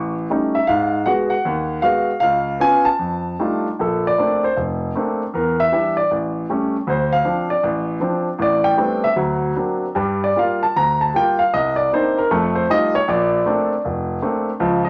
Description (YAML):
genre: solo jazz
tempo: 156 BPM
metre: 4/4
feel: swing 65% on 8ths, rubato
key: Bb major from 3.8 s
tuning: A4 = 442 Hz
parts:
  - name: warm concert grand piano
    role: solo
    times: 0.0-14.9 s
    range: F1 to C#6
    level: -19 LUFS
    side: equal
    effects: none
room: moderate large studio reverb, RT60 0.9 s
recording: none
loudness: -19 LUFS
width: mono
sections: 0.0-3.8 A section; 3.8-14.9 B section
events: grand piano solo 3.8-14.9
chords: 0.0 A7#11; 0.7 G#m7; 2.2 C#7; 3.0 F13; 3.8 Bbmaj9; 5.3 Em7b5; 6.1 A7; 6.9 Dm7; 8.4 Am11; 9.2 D7b13; 10.0 Gm7; 11.5 Cm9; 12.3 F9; 13.1 Bbmaj9